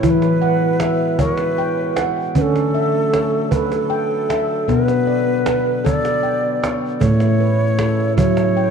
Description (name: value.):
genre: world meditative, meditative tuned percussion.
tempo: 52 BPM (dotted quarters).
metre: 6/8.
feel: straight.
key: A major.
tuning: A4 = 440 Hz.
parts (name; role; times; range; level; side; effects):
breathy mellow Native American-style cedar flute; melody; 0.0-8.7 s; A4 to D5; -20 LUFS; right 2 dB; tape echo.
mellow French horn section; sustained chords; 0.0-8.7 s; B2 to E4; -26 LUFS; right 1 dB; none.
handpan; arpeggios; 0.0-8.7 s; A2 to G5; -18 LUFS; left 1 dB; tape echo.
cajon; percussion; 0.0-8.6 s; none; -23 LUFS; right 2 dB; none.
room: wet echo chamber reverb, RT60 1.9 s.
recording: dark, warm production.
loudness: -15 LUFS.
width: side -6 dB against mid.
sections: 0.0-8.7 A section.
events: none.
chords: 0.0 E; 2.4 D; 4.7 Bm; 7.0 A.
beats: | 0.03 1.20 | 2.36 3.52 | 4.69 5.85 | 7.02 8.18.